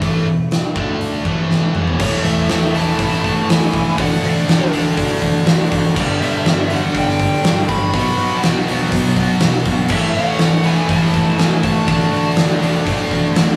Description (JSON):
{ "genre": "hard rock", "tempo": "122 BPM", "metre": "4/4", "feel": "straight", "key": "unclear", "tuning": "A4 = 440 Hz", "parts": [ { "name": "lead guitar through a small cranked amp", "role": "melody", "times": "0.0-12.3 s", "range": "C#5 to B5", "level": "-26 LUFS", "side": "equal", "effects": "overdrive" }, { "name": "cranked stack guitar", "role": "riff", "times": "0.0-13.6 s", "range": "E2 to D4", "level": "-24 LUFS", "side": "equal", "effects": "overdrive, spring reverb" }, { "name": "distorted electric guitar", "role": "riff", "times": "0.0-13.6 s", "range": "E2 to D4", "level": "-25 LUFS", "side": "equal", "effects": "distortion" }, { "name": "picked electric bass", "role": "bass", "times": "0.0-13.6 s", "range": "E1 to B2", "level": "-24 LUFS", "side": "equal", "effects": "none" }, { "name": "huge arena drum kit", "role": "drums", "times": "0.0-13.5 s", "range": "crash cymbal, hi-hat, kick drum, snare drum, toms", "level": "-21 LUFS", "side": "equal", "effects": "none" }, { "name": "octave-fuzz lead guitar", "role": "second line", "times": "2.0-12.3 s", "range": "A3 to F#4", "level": "-29 LUFS", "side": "equal", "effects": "distortion" }, { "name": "raw garage guitar", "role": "riff", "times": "2.0-13.6 s", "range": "G2 to F#4", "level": "-26 LUFS", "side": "equal", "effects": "overdrive" } ], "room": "moderate studio reverb, RT60 0.5 s", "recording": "rough rehearsal-room recording, studio ambience", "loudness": "-16 LUFS", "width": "mono", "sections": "0.0-2.0 A section; 2.0-13.6 B section", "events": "drum fill 1.5-2.0", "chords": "0.0 E5; 0.8 D5; 1.3 A5; 1.8 E5; 2.0 A; 4.0 D/A; 6.0 G; 7.9 B; 9.9 A; 11.9 D/A", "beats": "| 0.01 0.51 1.01 1.50 | 2.00 2.50 2.99 3.49 | 3.98 4.48 4.97 5.47 | 5.96 6.45 6.95 7.44 | 7.93 8.43 8.92 9.41 | 9.90 10.40 10.89 11.38 | 11.87 12.37 12.86 13.35" }